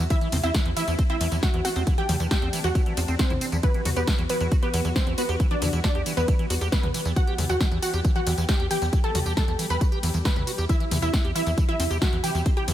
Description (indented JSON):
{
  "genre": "uplifting trance",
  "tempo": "136 BPM",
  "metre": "4/4",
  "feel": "straight",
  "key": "E minor",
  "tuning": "A4 = 440 Hz",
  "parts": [
    { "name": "dark studio string section", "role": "sustained chords", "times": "0.0-12.7 s", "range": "C3 to G4", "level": "-35 LUFS", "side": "left 3 dB", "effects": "sidechain pumping" },
    { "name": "liquid acid bass", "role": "arpeggios", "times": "0.0-12.7 s", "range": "E3 to G4", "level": "-31 LUFS", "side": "right 3 dB", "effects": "chorus, sidechain pumping, dub echo" },
    { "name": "tight sequencer bass", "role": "bass", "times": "0.0-12.7 s", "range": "E2", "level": "-27 LUFS", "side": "equal", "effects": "sidechain pumping" },
    { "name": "wide unison pluck", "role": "melody", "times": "0.1-12.7 s", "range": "B3 to B5", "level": "-29 LUFS", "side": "right 1 dB", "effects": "sidechain pumping, dub echo" },
    { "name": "electronic kick drum", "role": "drums", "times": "0.1-12.5 s", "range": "none", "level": "-23 LUFS", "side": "equal", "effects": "none" },
    { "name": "punchy analog drum machine", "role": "drums", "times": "0.1-12.7 s", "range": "hi-hat, ride cymbal, snare drum, tambourine, toms", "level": "-30 LUFS", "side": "left 1 dB", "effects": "overdrive" }
  ],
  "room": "little or no reverb",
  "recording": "none",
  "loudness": "-21 LUFS",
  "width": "side -12 dB against mid",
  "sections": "0.0-12.7 A section",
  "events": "none",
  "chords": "0.1 Am/E; 3.6 Emadd9; 10.7 C/E",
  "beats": "| 0.10 0.55 0.99 1.43 | 1.87 2.31 2.75 3.19 | 3.63 4.08 4.52 4.96 | 5.40 5.84 6.28 6.72 | 7.16 7.60 8.04 8.49 | 8.93 9.37 9.81 10.25 | 10.69 11.13 11.57 12.02 | 12.46"
}